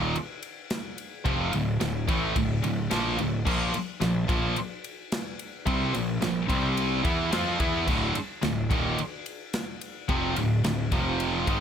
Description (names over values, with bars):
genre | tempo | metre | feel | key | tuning
heavy metal | 109 BPM | 4/4 | straight | D minor | A4 = 440 Hz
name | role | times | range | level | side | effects
scooped high-gain guitar | riff | 0.0-11.6 s | D2 to F4 | -31 LUFS | left 8 dB | distortion
scooped high-gain guitar | riff | 0.0-11.6 s | D2 to F4 | -30 LUFS | right 8 dB | distortion
tight distorted guitar | riff | 0.0-11.6 s | D2 to F4 | -31 LUFS | equal | distortion
fuzz picked electric bass | bass | 0.0-11.6 s | D1 to F2 | -32 LUFS | equal | overdrive
modern studio drum kit | drums | 0.2-11.6 s | crash cymbal, kick drum, ride cymbal, snare drum | -31 LUFS | left 1 dB | none
room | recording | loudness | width
light reverb | none | -25 LUFS | side -8 dB against mid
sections
0.0-11.6 A section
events
none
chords
0.0 Dm; 3.5 Bb5; 6.5 C5; 7.0 Cadd11/E; 7.9 Dm; 10.9 F5